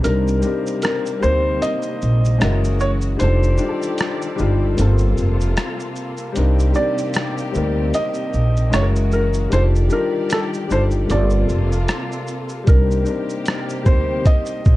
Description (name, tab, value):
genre	lo-fi hip hop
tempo	76 BPM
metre	4/4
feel	swing 56% on 16ths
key	C dorian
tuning	A4 = 440 Hz
part	felt-muted upright piano	melody	0.0-14.8 s	A4 to Eb5	-24 LUFS	equal	low-pass filter
part	warm upright piano	accompaniment	0.0-14.8 s	G3 to C5	-23 LUFS	left 3 dB	cassette tape, low-pass filter
part	clear studio string section	sustained chords	0.0-14.8 s	C3 to D5	-30 LUFS	equal	low-pass filter
part	lo-fi sampler-style drum kit	drums	0.0-14.8 s	hi-hat, kick drum, rim click, shaker	-19 LUFS	equal	vintage 12-bit sampler grit
part	upright bass	bass	0.1-14.8 s	F1 to D2	-17 LUFS	equal	none
room	small room reverb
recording	dark, warm production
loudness	-16 LUFS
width	side -17 dB against mid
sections	0.0-14.8 A section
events	break 0.0-12.7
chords	0.0 Cm9; 2.4 F#9; 3.2 F13; 4.8 Gm11; 6.4 Cm9; 8.7 F#9; 9.5 F13; 11.1 Gm11; 12.7 Cm9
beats	| 0.04 0.83 1.62 2.41 | 3.20 3.99 4.78 5.57 | 6.36 7.15 7.94 8.73 | 9.52 10.31 11.10 11.89 | 12.68 13.47 14.26